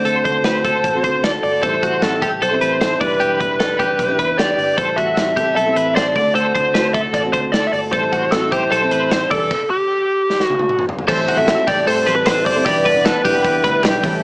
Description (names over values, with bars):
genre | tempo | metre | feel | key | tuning
jangly indie pop | 152 BPM | 4/4 | straight | A dorian | A4 = 437 Hz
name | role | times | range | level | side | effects
biting lead guitar | melody | 0.0-13.8 s | G4 to E5 | -17 LUFS | equal | overdrive
picked steel-string acoustic guitar | accompaniment | 0.0-14.2 s | A2 to B4 | -22 LUFS | right 1 dB | none
twelve-string electric guitar | arpeggios | 0.0-14.2 s | F#4 to D5 | -20 LUFS | left 1 dB | tremolo
vintage muted picked electric bass | bass | 0.0-14.2 s | E1 to A2 | -30 LUFS | equal | none
modern studio drum kit | drums | 0.1-14.1 s | crash cymbal, hi-hat, kick drum, snare drum, toms | -22 LUFS | equal | none
phased analog pad | sustained chords | 11.1-14.2 s | E3 to F#5 | -30 LUFS | equal | none
group handclap | percussion | 11.5-13.9 s | none | -31 LUFS | right 1 dB | none
room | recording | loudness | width
light reverb, studio reverb | small speaker sound | -14 LUFS | side -28 dB against mid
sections
0.0-11.1 A section; 11.1-14.2 B section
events
drum fill 10.3-11.1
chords
0.0 D7; 1.6 Am7; 3.0 Em7; 4.8 Am7; 6.2 D7; 7.9 Am7; 9.3 Em7; 11.1 Am7; 12.7 Em7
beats
| 0.06 0.45 0.85 1.24 | 1.63 2.03 2.42 2.81 | 3.21 3.60 3.99 4.39 | 4.78 5.17 5.57 5.96 | 6.36 6.75 7.14 7.54 | 7.93 8.32 8.72 9.11 | 9.51 9.90 10.30 10.69 | 11.09 11.48 11.87 12.27 | 12.66 13.05 13.45 13.84